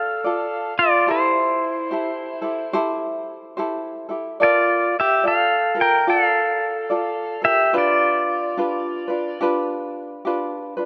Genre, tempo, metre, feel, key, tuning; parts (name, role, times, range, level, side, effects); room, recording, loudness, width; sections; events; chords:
Hawaiian; 72 BPM; 4/4; swing 61% on 8ths; A4 = 440 Hz
pedal steel guitar; melody; 0.0-9.4 s; E4 to G5; -21 LUFS; equal
tenor ukulele; accompaniment; 0.0-10.9 s; D4 to D5; -26 LUFS; equal
moderate lush hall reverb, RT60 2.6 s; rough home demo mix; -21 LUFS; mono
0.0-10.9 A section
0.0 Bbmaj7 (rootless); 1.1 Am7/E; 4.4 Bbmaj7; 7.8 G7